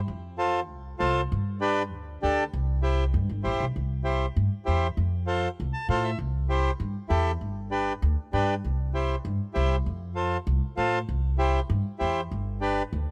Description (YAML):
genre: latin, cumbia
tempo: 196 BPM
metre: 4/4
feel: straight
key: C major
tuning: A4 = 445 Hz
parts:
  - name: upright bass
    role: bass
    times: 0.0-13.0 s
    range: G1 to A2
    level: -30 LUFS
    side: equal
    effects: none
  - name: accordion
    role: accompaniment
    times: 0.4-12.8 s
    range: D4 to A5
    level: -30 LUFS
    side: equal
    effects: none
room: little or no reverb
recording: none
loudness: -27 LUFS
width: mono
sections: 0.0-3.7 A section; 3.7-13.1 B section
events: accordion fill 5.6-6.2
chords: 0.1 F; 1.3 G; 2.5 C; 5.0 F; 6.2 C; 7.4 G; 8.6 C; 9.9 F; 11.1 C; 12.3 G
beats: | 0.09 0.39 0.70 1.00 | 1.31 1.61 1.92 2.22 | 2.53 2.83 3.14 3.44 | 3.75 4.05 4.36 4.66 | 4.97 5.27 5.58 5.88 | 6.19 6.50 6.80 7.11 | 7.41 7.72 8.02 8.33 | 8.63 8.94 9.24 9.55 | 9.86 10.16 10.47 10.77 | 11.08 11.39 11.69 12.00 | 12.30 12.61 12.91